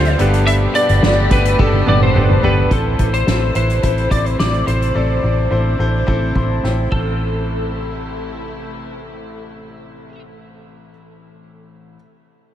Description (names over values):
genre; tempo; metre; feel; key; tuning
piano-driven pop; 107 BPM; 4/4; straight; A minor; A4 = 441 Hz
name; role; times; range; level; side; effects
lightly driven lead guitar; melody; 0.0-10.2 s; A4 to F5; -21 LUFS; left 1 dB; analog chorus
clear concert grand piano; accompaniment; 0.0-12.0 s; A1 to C6; -23 LUFS; left 1 dB; none
rich chamber string section; sustained chords; 0.0-10.2 s; B2 to G4; -29 LUFS; left 2 dB; none
direct-recorded clean electric guitar; riff; 0.0-2.7 s; G3 to C5; -28 LUFS; right 5 dB; analog chorus
vintage muted fingered electric bass; bass; 0.0-10.9 s; G1 to D2; -17 LUFS; equal; none
soft-mallet drum kit; drums; 0.0-7.0 s; crash cymbal, hi-hat, kick drum, snare drum, toms; -20 LUFS; right 1 dB; none
room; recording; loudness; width
moderate huge ambient reverb, RT60 7.7 s; dreamy mix soaked in reverb; -13 LUFS; side -11 dB against mid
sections
0.0-2.7 A section; 2.7-7.2 B section; 7.2-9.4 C section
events
drum fill 1.6-2.7, 6.6-7.2; grand piano fill 6.1-7.2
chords
0.2 Gadd9; 2.7 Am